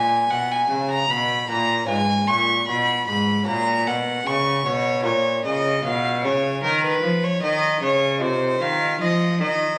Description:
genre	classical, baroque-style sonata movement with continuo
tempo	76 BPM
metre	4/4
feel	straight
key	unclear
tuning	A4 = 437 Hz
part	rich violin	melody	0.0-9.8 s	Bb4 to Db6	-23 LUFS	equal	none
part	lute	accompaniment	0.0-9.8 s	Ab2 to Cb5	-34 LUFS	equal	none
part	rich cello	bass	0.0-9.8 s	Ab2 to F3	-26 LUFS	equal	none
room	moderate recital hall reverb, RT60 1.5 s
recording	recorded on a phone in the room, studio ambience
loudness	-21 LUFS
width	mono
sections	0.0-9.8 A section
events	none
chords	0.0 Gb; 1.9 Db7/Ab; 3.5 Gb/Bb; 5.1 Bbm; 8.2 F7/C

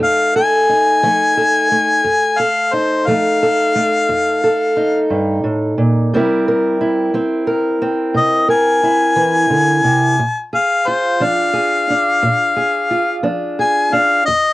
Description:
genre	acoustic country blues, solo or duo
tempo	59 BPM (dotted quarters)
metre	12/8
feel	straight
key	F mixolydian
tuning	A4 = 440 Hz
part	clear harmonica	melody	0.0-14.5 s	C5 to Ab5	-14 LUFS	left 2 dB	cassette tape
part	fingerpicked steel-string acoustic guitar	accompaniment	0.0-14.5 s	F2 to Bb4	-16 LUFS	right 1 dB	cassette tape
room	moderate booth ambience, RT60 0.2 s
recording	home recording on cassette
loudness	-13 LUFS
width	side -18 dB against mid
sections	0.0-14.5 A section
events	none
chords	0.0 F7; 6.1 C7; 10.2 Bb7

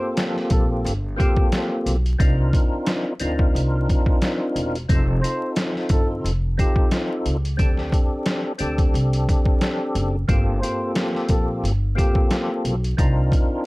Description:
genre	hip hop, boom-bap hip-hop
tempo	89 BPM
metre	4/4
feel	swing 55% on 16ths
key	G minor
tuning	A4 = 440 Hz
part	trumpet with bucket mute	melody	0.0-12.3 s	G4 to C5	-30 LUFS	equal	high-pass filter, low-pass filter, tape echo
part	percussive tonewheel organ	accompaniment	0.0-13.7 s	Bb3 to Bb4	-25 LUFS	equal	chorus vibrato, slow rotary speaker, high-pass filter, low-pass filter
part	trip hop sampler-style drum kit	drums	0.2-13.5 s	hi-hat, kick drum, snare drum	-20 LUFS	equal	none
part	upright bass	bass	0.5-13.3 s	E1 to D2	-23 LUFS	equal	none
room	light reverb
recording	dark, warm production, vinyl crackle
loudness	-18 LUFS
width	side -22 dB against mid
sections	0.0-13.7 A section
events	none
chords	0.0 Gm11; 2.2 Cm11; 4.9 F7; 7.6 D7sus4; 10.3 Gm11; 13.0 Cm11

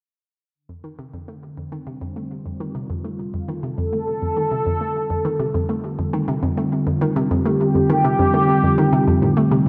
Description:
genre	ambient, sequencer-driven space music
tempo	102 BPM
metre	4/4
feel	straight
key	unclear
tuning	A4 = 440 Hz
part	sweeping resonant pad	sustained chords	0.5-9.7 s	D3 to A4	-22 LUFS	equal	chorus
part	hollow square pluck	riff	0.7-9.7 s	F2 to A3	-25 LUFS	equal	chorus, phaser, tape echo
room	wet lush hall reverb, RT60 2.6 s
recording	dark, warm production, nothing above 10.9 kHz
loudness	-20 LUFS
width	mono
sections	0.5-9.7 A section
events	fade-in on synth arpeggio sound 0.5-9.7; fade-in on analog synth pad 0.5-9.7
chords	0.5 F

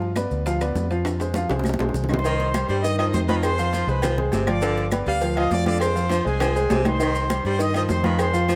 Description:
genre	latin, salsa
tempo	202 BPM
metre	4/4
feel	straight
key	C harmonic minor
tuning	A4 = 440 Hz
part	clear grand piano	accompaniment	0.0-8.6 s	Eb3 to F5	-28 LUFS	equal	none
part	vintage muted fingered electric bass	bass	0.0-8.6 s	G1 to G2	-28 LUFS	equal	none
part	bongos and cowbell	percussion	0.0-8.6 s	none	-35 LUFS	equal	none
part	congas	percussion	0.0-8.6 s	none	-31 LUFS	equal	none
part	claves	percussion	0.2-8.3 s	none	-41 LUFS	equal	none
part	maracas	percussion	0.2-8.6 s	none	-44 LUFS	equal	none
part	timbales and agogo bells	percussion	0.2-8.6 s	none	-34 LUFS	equal	none
part	bright trumpet section	melody	2.1-8.6 s	Ab4 to Eb6	-29 LUFS	equal	none
part	bright baritone saxophone	second line	2.3-8.6 s	C3 to G3	-31 LUFS	equal	none
room	light reverb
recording	none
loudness	-22 LUFS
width	mono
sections	0.0-2.2 A section; 2.2-8.6 B section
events	drum fill 1.1-2.2, 6.1-7.0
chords	0.0 G7; 1.1 Fm; 2.2 Cm; 3.4 Fm; 4.6 G7; 5.8 Fm; 7.0 Cm

